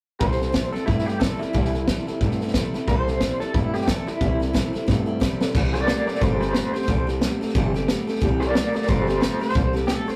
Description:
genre	rockabilly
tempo	180 BPM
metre	4/4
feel	swing 59% on 8ths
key	C mixolydian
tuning	A4 = 440 Hz
part	electric guitar through a small old amp	melody	0.2-10.2 s	E4 to D5	-29 LUFS	equal	tremolo
part	picked steel-string acoustic guitar	accompaniment	0.2-10.2 s	C3 to A4	-32 LUFS	equal	none
part	electric guitar through a small old amp	riff	0.2-10.2 s	C3 to A3	-32 LUFS	equal	none
part	upright bass	bass	0.2-10.1 s	G1 to G2	-28 LUFS	equal	none
part	vintage drum kit	drums	0.2-10.1 s	crash cymbal, hi-hat, kick drum, snare drum	-27 LUFS	equal	none
room	moderate small room reverb, RT60 0.5 s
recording	rough rehearsal-room recording, tube saturation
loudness	-23 LUFS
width	mono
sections	0.2-5.5 A section; 5.5-10.2 B section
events	drum fill 4.9-5.5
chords	0.2 C6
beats	| 0.21 0.54 0.87 1.21 | 1.54 1.88 2.21 2.54 | 2.88 3.21 3.55 3.88 | 4.21 4.55 4.88 5.21 | 5.55 5.88 6.21 6.55 | 6.88 7.21 7.54 7.88 | 8.21 8.54 8.88 9.21 | 9.54 9.88

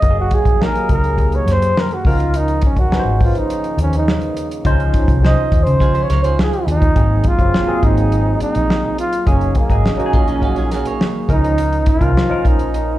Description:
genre	lush 1970s-style soul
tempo	104 BPM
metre	4/4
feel	straight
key	Db major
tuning	A4 = 440 Hz
part	breathy flugelhorn	melody	0.0-13.0 s	Bb3 to Eb5	-20 LUFS	right 2 dB	slapback echo
part	barky tine electric piano	accompaniment	0.0-13.0 s	F3 to C5	-22 LUFS	equal	phaser, slapback echo
part	vintage muted fingered electric bass	bass	0.0-13.0 s	Gb1 to Db3	-17 LUFS	equal	none
part	warm soul drum kit	drums	0.0-12.9 s	hi-hat, kick drum, snare drum	-17 LUFS	equal	none
part	warm French horn section	sustained chords	2.3-6.9, 11.6-13.0 s	Db3 to C5	-30 LUFS	equal	none
part	electric guitar through a small old amp	riff	5.8-11.3 s	Db4 to Db5	-26 LUFS	right 5 dB	slapback echo
room	small room ambience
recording	live gig heard through the venue's PA, club reverb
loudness	-13 LUFS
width	side -15 dB against mid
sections	0.0-7.0 A section; 7.0-13.0 B section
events	flugelhorn solo 0.0-7.0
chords	0.0 Gb69; 2.0 Db69; 4.6 Dbmaj9; 7.0 Ab9; 9.3 Gb69; 11.3 Db69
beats	| 0.03 0.60 1.18 1.76 | 2.34 2.91 3.49 4.07 | 4.65 5.22 5.80 6.38 | 6.96 7.53 8.11 8.69 | 9.27 9.84 10.42 11.00 | 11.57 12.15 12.73

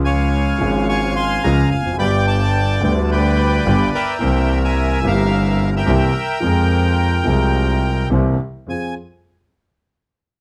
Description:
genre	tango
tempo	108 BPM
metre	4/4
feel	rubato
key	F minor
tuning	A4 = 440 Hz
part	bandoneon	melody	0.0-8.9 s	Bb4 to Db6	-23 LUFS	equal	none
part	warm concert grand piano	accompaniment	0.0-8.9 s	G1 to Ab4	-21 LUFS	equal	none
part	bright double bass	bass	0.0-8.9 s	F1 to F2	-21 LUFS	equal	none
room	light reverb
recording	close, detailed microphones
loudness	-17 LUFS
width	mono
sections	0.0-8.7 A section; 8.7-10.4 B section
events	none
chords	0.0 Db; 2.0 G; 4.2 C7; 6.4 Fm; 8.1 C7; 8.7 Fm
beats	0.32 0.89 1.44 | 2.00 2.55 3.10 3.65 | 4.20 4.75 5.30 5.86 | 6.42 6.97 7.54 8.11 | 8.67

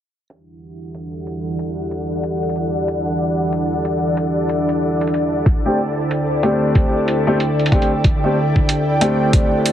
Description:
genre	glitch hop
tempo	93 BPM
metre	4/4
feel	swing 60% on 16ths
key	E minor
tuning	A4 = 441 Hz
part	dark analog pad	sustained chords	0.7-9.7 s	D3 to G5	-21 LUFS	right 1 dB	chorus, sidechain pumping
part	electronic hi-hat	drums	0.3-9.7 s	none	-25 LUFS	right 2 dB	overdrive
part	ethereal airy pad	texture	0.8-9.7 s	E4 to G5	-23 LUFS	left 2 dB	ensemble chorus, built-in reverb, sidechain pumping
part	electronic kick drum	drums	5.5-9.5 s	none	-15 LUFS	equal	overdrive
part	dark concert grand piano	stabs	5.7-9.7 s	A3 to G4	-18 LUFS	left 1 dB	sidechain pumping, dub echo
room	light reverb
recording	heavily compressed radio sound, multiband compression, low-pass filter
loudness	-16 LUFS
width	side -10 dB against mid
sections	0.3-9.7 A section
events	filter sweep on analog synth pad 0.3-9.7; filter sweep 0.3-9.7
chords	0.3 Em9; 5.5 D7sus4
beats	| 0.30 0.95 1.59 2.24 | 2.88 3.53 4.17 4.82 | 5.46 6.11 6.75 7.40 | 8.04 8.69 9.33

